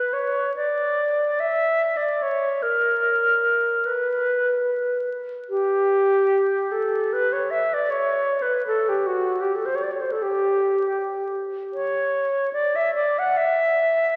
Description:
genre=classical, free, expressive piece for unaccompanied alto flute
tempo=68-79 BPM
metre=4/4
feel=rubato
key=B minor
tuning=A4 = 440 Hz
part: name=bright alto flute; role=solo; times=0.0-14.2 s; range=F#4 to F#5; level=-22 LUFS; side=equal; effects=none
room=wet church reverb, RT60 3.6 s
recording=very old 78 rpm record, vinyl crackle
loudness=-23 LUFS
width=mono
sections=0.0-14.2 A section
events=none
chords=none

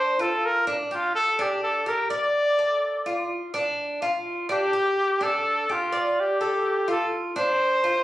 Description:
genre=latin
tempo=126 BPM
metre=4/4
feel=straight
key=G minor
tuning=A4 = 439 Hz
part: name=clear trumpet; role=melody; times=0.0-8.0 s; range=D4 to D5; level=-22 LUFS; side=equal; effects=none
part: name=Cuban tres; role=arpeggios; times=0.0-8.0 s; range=D4 to D5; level=-27 LUFS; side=right 1 dB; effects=none
room=moderate small room reverb, RT60 0.5 s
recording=recorded on a phone in the room, club reverb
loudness=-22 LUFS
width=side -15 dB against mid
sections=0.0-8.0 A section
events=trumpet solo 0.0-8.0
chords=0.0 G5; 1.4 Dsus4; 3.3 G5; 5.2 Dsus4; 7.1 G7(no3) (rootless)

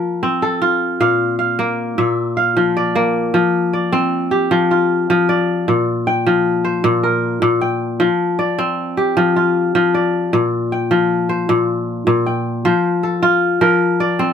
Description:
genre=west african traditional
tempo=103 BPM (dotted quarters)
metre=12/8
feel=straight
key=F major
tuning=A4 = 441 Hz
part: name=kora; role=solo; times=0.0-14.3 s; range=Bb2 to G5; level=-14 LUFS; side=left 1 dB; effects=none
room=little or no reverb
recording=none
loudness=-14 LUFS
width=side -8 dB against mid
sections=0.0-3.4 A section; 3.4-12.7 B section; 12.7-14.3 C section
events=none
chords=0.0 F; 1.0 Bb; 3.4 F5; 5.7 Bb; 8.0 F5; 10.3 Bb; 12.7 F

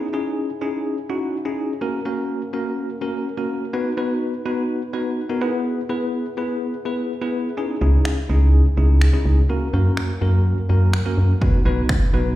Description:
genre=dance-pop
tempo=125 BPM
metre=4/4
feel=straight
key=C# dorian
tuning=A4 = 440 Hz
part: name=bell-like tine electric piano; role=accompaniment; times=0.0-12.4 s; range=A#3 to B4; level=-23 LUFS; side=left 1 dB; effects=medium stereo tremolo, sidechain pumping, plate reverb, slapback echo
part: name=organ-like FM bass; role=bass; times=7.8-12.4 s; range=B1 to F#2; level=-15 LUFS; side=equal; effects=sidechain pumping
part: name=punchy analog drum machine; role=drums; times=8.1-12.0 s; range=finger snaps, kick drum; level=-21 LUFS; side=equal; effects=none
room=little or no reverb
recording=live gig heard through the venue's PA, recital hall reverb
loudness=-18 LUFS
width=side -15 dB against mid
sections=0.0-12.4 A section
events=none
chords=0.0 C#madd9; 1.8 F#; 3.7 B; 5.4 E; 7.6 C#madd9; 9.5 F#; 11.4 B

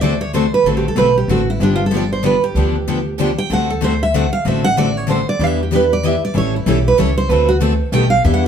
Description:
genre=acoustic string swing (jazz manouche)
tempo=190 BPM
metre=3/4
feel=swing 58% on 8ths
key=D mixolydian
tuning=A4 = 439 Hz
part: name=picked steel-string acoustic guitar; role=melody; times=0.0-8.4 s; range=D4 to G5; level=-17 LUFS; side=right 3 dB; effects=none
part: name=picked steel-string acoustic guitar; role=accompaniment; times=0.0-8.4 s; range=B2 to A4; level=-20 LUFS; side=left 5 dB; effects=none
part: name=picked steel-string acoustic guitar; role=accompaniment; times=0.0-8.5 s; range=B2 to B4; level=-23 LUFS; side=right 1 dB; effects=none
part: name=upright bass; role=bass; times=0.0-8.5 s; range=G1 to E2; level=-19 LUFS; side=equal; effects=none
room=wet studio reverb, RT60 0.7 s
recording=heard from further back in the room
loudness=-13 LUFS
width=side -8 dB against mid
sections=0.0-8.5 A section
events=steel-string acoustic guitar solo 0.0-8.5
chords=0.0 D7; 1.6 G7; 3.5 D7; 5.4 Em7; 6.4 A7; 7.3 D7; 7.9 Baug7

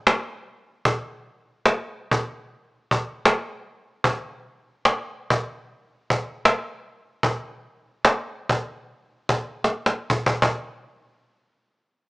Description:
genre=metal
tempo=75 BPM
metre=4/4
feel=swing 58% on 8ths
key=none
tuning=none
part: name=cajon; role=drums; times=0.1-10.6 s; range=none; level=-19 LUFS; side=equal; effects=none
room=light reverb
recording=small speaker sound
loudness=-22 LUFS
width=side -24 dB against mid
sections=0.0-10.4 A section; 10.4-12.1 B section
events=drum fill 9.6-10.4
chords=none

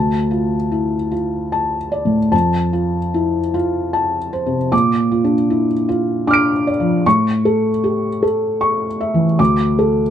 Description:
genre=neoclassical minimalist piano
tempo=76 BPM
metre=3/4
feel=rubato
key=D minor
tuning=A4 = 440 Hz
part: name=felt-muted upright piano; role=solo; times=0.0-10.1 s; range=D2 to D7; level=-15 LUFS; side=equal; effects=none
room=little or no reverb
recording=close, detailed microphones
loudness=-15 LUFS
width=side -9 dB against mid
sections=0.0-10.1 A section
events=none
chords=0.0 Dm; 2.3 F; 4.7 Bb; 7.1 A; 9.4 D5

